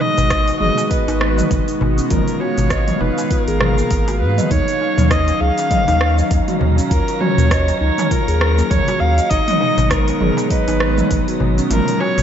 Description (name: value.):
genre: organic downtempo.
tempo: 100 BPM.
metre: 4/4.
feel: swing 57% on 16ths.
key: unclear.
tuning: A4 = 441 Hz.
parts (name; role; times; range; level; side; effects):
dark kamancheh; melody; 0.0-12.2 s; Bb4 to F5; -21 LUFS; equal; ping-pong delay.
airy breathy pad; sustained chords; 0.0-12.2 s; Eb3 to F5; -24 LUFS; equal; chorus, sidechain pumping.
steel tongue drum; arpeggios; 0.0-12.2 s; Bb3 to Eb5; -23 LUFS; equal; ping-pong delay.
darbuka; percussion; 0.0-12.2 s; none; -26 LUFS; left 2 dB; none.
warm sub bass; bass; 0.2-12.2 s; Gb1 to Ab2; -18 LUFS; equal; sidechain pumping.
organic electronic drum kit; drums; 0.2-12.2 s; hi-hat, rim click, shaker, toms; -22 LUFS; right 1 dB; overdrive.
electronic kick drum; drums; 0.3-11.2 s; none; -21 LUFS; equal; none.
wind-like tuned noise texture; texture; 5.4-12.2 s; Db5 to Bb5; -30 LUFS; right 2 dB; built-in reverb.
room: light reverb.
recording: nothing above 7.8 kHz.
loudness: -14 LUFS.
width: side -9 dB against mid.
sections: 0.0-12.2 A section.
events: kick drops out 11.7-12.2.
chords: 0.0 Abm9; 4.5 Ebm9; 9.3 Abm9.